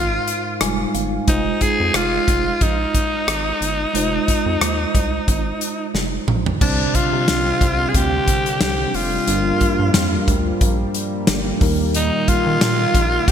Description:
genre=1980s-style pop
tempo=90 BPM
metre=4/4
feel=swing 55% on 16ths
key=F dorian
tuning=A4 = 439 Hz
part: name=breathy alto saxophone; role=melody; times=0.0-13.3 s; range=D4 to Ab4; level=-21 LUFS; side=equal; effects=ping-pong delay
part: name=mellow tine electric piano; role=accompaniment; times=0.0-13.3 s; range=G2 to Ab5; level=-24 LUFS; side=right 2 dB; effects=medium stereo tremolo
part: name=rubbery square bass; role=bass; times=0.0-13.3 s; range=F1 to Eb3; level=-24 LUFS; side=equal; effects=none
part: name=modern studio drum kit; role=drums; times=0.3-13.3 s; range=crash cymbal, hi-hat, kick drum, rim click, snare drum, toms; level=-20 LUFS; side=equal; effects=gated reverb
part: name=chorused pulse-width pad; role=sustained chords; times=6.6-13.3 s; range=Bb2 to C4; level=-26 LUFS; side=left 1 dB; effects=none
room=moderate lush hall reverb, RT60 2.8 s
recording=bright 1980s-style digital production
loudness=-16 LUFS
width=side -8 dB against mid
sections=0.0-6.6 A section; 6.6-13.3 B section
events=tine electric piano fill 0.3-1.3; drum fill 5.9-6.6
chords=0.0 Fm7; 6.6 Csus2; 9.3 Gm7; 11.6 Eb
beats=0.61 | 1.28 1.95 2.61 3.28 | 3.94 4.61 5.28 5.95 | 6.61 7.28 7.95 8.61 | 9.28 9.95 10.61 11.28 | 11.95 12.61 13.28

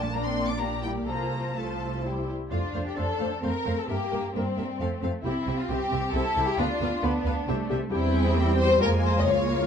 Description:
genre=quick classical-period movement for string orchestra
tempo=133 BPM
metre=3/4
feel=straight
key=F major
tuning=A4 = 440 Hz
part: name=warm symphonic violin section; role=melody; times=0.0-9.7 s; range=E5 to D6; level=-38 LUFS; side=left 4 dB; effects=none
part: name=warm symphonic violin section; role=second line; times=0.0-9.7 s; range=C4 to Eb5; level=-28 LUFS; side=left 3 dB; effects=none
part: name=warm symphonic viola section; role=accompaniment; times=0.0-9.7 s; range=F3 to C5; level=-30 LUFS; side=equal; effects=none
part: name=rich symphonic cello section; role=bass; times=0.0-9.7 s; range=G3 to E4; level=-34 LUFS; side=right 1 dB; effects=none
part: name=rich symphonic double bass section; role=bass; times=0.0-9.7 s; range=Bb1 to G2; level=-29 LUFS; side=right 2 dB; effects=none
room=moderate large studio reverb, RT60 1.4 s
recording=dark, warm production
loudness=-24 LUFS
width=side -7 dB against mid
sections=0.0-2.5 A section; 2.5-9.7 B section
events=none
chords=0.0 Bb; 0.6 Gm/Bb; 1.1 F/C; 2.0 C; 2.5 F; 3.9 Edim/G; 4.8 F; 5.2 C; 6.6 Bdim/D; 7.5 C5; 7.9 C/E; 8.8 Fm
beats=0.14 0.60 | 1.08 1.56 2.04 | 2.51 2.97 3.43 | 3.89 4.35 4.80 | 5.25 5.70 6.14 | 6.59 7.04 7.48 | 7.92 8.37 8.81 | 9.25

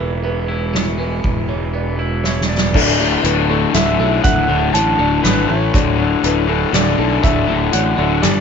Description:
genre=post-rock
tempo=120 BPM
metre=3/4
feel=straight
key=D lydian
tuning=A4 = 440 Hz
part: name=airy breathy pad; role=sustained chords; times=0.2-8.4 s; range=B2 to E4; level=-29 LUFS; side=right 2 dB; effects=none
part: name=felt-muted upright piano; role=arpeggios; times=0.0-8.4 s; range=D4 to E5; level=-28 LUFS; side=right 9 dB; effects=analog delay
part: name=twangy electric guitar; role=arpeggios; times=0.0-8.4 s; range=D2 to E4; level=-25 LUFS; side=left 2 dB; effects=phaser, analog delay
part: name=fuzz fingered electric bass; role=bass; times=0.0-8.4 s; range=D1 to B1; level=-20 LUFS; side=right 1 dB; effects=overdrive
part: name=soft-mallet drum kit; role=drums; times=0.2-8.3 s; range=crash cymbal, hi-hat, kick drum, ride cymbal, snare drum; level=-19 LUFS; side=equal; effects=none
part: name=clean lap steel guitar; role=melody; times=2.2-8.4 s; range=B4 to A5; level=-22 LUFS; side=right 3 dB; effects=none
part: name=raw garage guitar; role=riff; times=2.7-8.4 s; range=D2 to A3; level=-18 LUFS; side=left 11 dB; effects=overdrive
room=studio reverb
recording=nothing above 7.5 kHz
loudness=-14 LUFS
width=side -6 dB against mid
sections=0.0-2.7 A section; 2.7-8.4 B section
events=drum fill 2.2-2.7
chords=0.0 E; 2.7 Dadd9; 5.5 A5; 5.7 Dadd9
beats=0.24 0.74 | 1.24 1.74 2.24 | 2.74 3.24 3.74 | 4.24 4.74 5.24 | 5.73 6.23 6.73 | 7.23 7.73 8.22

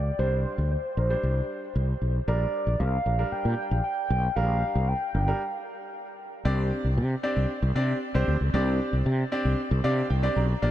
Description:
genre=dance-pop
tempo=115 BPM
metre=4/4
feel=straight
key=unclear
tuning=A4 = 440 Hz
part: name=warm velvety synth lead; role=melody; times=0.0-5.9 s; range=C5 to G5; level=-31 LUFS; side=right 1 dB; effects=chorus, ping-pong delay
part: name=fretless electric bass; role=bass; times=0.0-10.7 s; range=G1 to C3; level=-24 LUFS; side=equal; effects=none
part: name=clear baby grand piano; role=accompaniment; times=0.2-10.7 s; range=G3 to Bb5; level=-31 LUFS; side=equal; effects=none
room=light reverb, small room ambience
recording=none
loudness=-24 LUFS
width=side -12 dB against mid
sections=0.0-6.5 A section; 6.5-10.7 B section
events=build-up 0.0-6.5; stop 5.4-6.5; drop 6.5-10.7; grand piano fill 9.6-10.6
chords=0.0 Csus2; 2.3 Gm/Bb; 6.5 Csus2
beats=| 0.19 0.71 1.23 1.76 | 2.28 2.80 3.32 3.84 | 4.37 4.89 5.41 5.93 | 6.45 6.97 7.50 8.02 | 8.54 9.06 9.58 10.10 | 10.62

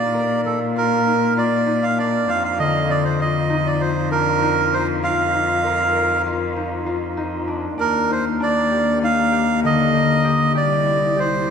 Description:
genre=contemporary instrumental, chamber music in an uneven meter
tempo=196 BPM (eighths)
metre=9/8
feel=straight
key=unclear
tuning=A4 = 440 Hz
part: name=melodica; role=melody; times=0.0-11.5 s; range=A4 to F5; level=-19 LUFS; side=right 3 dB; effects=none
part: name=concert harp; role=arpeggios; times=0.0-11.5 s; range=D3 to Bb4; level=-23 LUFS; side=left 4 dB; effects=none
part: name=rich cello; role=bass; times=0.0-11.5 s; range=C2 to Bb2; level=-23 LUFS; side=left 3 dB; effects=none
room=wet church reverb, RT60 3.6 s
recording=recorded in a church or concert hall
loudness=-17 LUFS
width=side -7 dB against mid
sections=0.0-7.8 A section; 7.8-11.5 B section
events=none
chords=0.0 Bb; 2.3 Fsus4; 7.8 Ebmaj7; 10.6 C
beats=0.15 0.45 0.76 1.06 1.37 1.67 1.98 | 2.29 2.59 2.90 3.20 3.51 3.81 4.12 4.42 4.73 | 5.04 5.34 5.65 5.95 6.26 6.57 6.87 7.18 7.49 | 7.79 8.10 8.40 8.71 9.02 9.32 9.63 9.94 10.25 | 10.55 10.86 11.17 11.47

